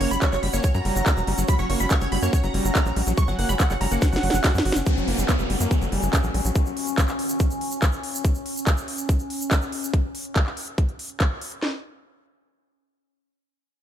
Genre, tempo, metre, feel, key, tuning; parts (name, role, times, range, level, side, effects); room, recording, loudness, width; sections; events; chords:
psychedelic trance; 142 BPM; 4/4; straight; F# major; A4 = 439 Hz
supersaw stab; melody; 0.0-4.8 s; C#5 to C#6; -29 LUFS; right 2 dB; phaser, cassette tape, sidechain pumping, digital delay
evolving wavetable pad; sustained chords; 0.0-9.9 s; C#4; -31 LUFS; left 1 dB; phaser, built-in reverb, sidechain pumping
overdriven acid bass; riff; 0.0-6.5 s; F#3 to F#4; -31 LUFS; moving between left 4 dB and right 3 dB; distortion, auto-pan, sidechain pumping, digital delay
tight sequencer bass; bass; 0.0-6.5 s; E1 to F#2; -25 LUFS; equal
techno drum kit; drums; 0.0-11.6 s; handclaps, hi-hat, snare drum; -28 LUFS; equal; overdrive, studio reverb
airy breathy pad; texture; 0.0-8.2 s; F#4 to F#5; -34 LUFS; right 1 dB; chorus, sidechain pumping
egg shaker; percussion; 0.1-9.9 s; -35 LUFS; right 2 dB
drum and bass drum kit; drums; 0.2-11.7 s; kick drum, snare drum; -21 LUFS; equal; studio reverb
downlifter; sound effects; 4.9-8.2 s; -32 LUFS; left 1 dB
little or no reverb; -20 LUFS; side -10 dB against mid
0.0-4.9 A section; 4.9-11.6 B section; 11.6-13.8 C section
drop 0.0-4.9; drum fill 4.0-4.9; filter sweep on acid bass 4.9-6.6; filter sweep on ambient pad 4.9-9.9
0.0 F#5; 11.6 N.C.